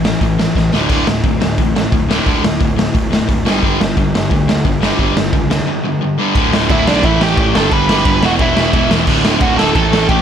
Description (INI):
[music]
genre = punk rock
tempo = 176 BPM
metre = 4/4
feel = straight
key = unclear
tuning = A4 = 439 Hz
[part]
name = distorted electric guitar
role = riff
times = 0.0-10.2 s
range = D2 to A3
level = -18 LUFS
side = left 12 dB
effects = distortion
[part]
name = sludgy distorted guitar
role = riff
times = 0.0-10.2 s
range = D2 to A3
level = -18 LUFS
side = right 12 dB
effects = overdrive
[part]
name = fuzz picked electric bass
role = bass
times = 0.0-10.2 s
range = D1 to D2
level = -20 LUFS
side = equal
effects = overdrive
[part]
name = raw garage drum kit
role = drums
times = 0.1-10.2 s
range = crash cymbal, hi-hat, kick drum, ride cymbal, snare drum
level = -16 LUFS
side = equal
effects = none
[part]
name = bluesy overdriven lead guitar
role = melody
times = 6.7-10.2 s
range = D4 to B5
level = -17 LUFS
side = right 3 dB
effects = distortion, digital delay
[sound]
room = light reverb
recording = none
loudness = -11 LUFS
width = side -8 dB against mid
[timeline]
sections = 0.0-6.4 A section; 6.4-10.2 B section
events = drum fill 0.6-0.9; break 5.7-6.4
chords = 0.0 A5; 0.7 D5; 3.5 G5; 6.4 D5; 7.0 A5; 7.5 G; 8.2 E5; 9.1 D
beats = 0.21 0.56 | 0.90 1.24 1.58 1.92 | 2.26 2.60 2.95 3.29 | 3.63 3.97 4.31 4.65 | 4.99 5.33 5.67 6.01 | 6.36 6.70 7.04 7.38 | 7.72 8.05 8.39 8.73 | 9.07 9.41 9.76 10.10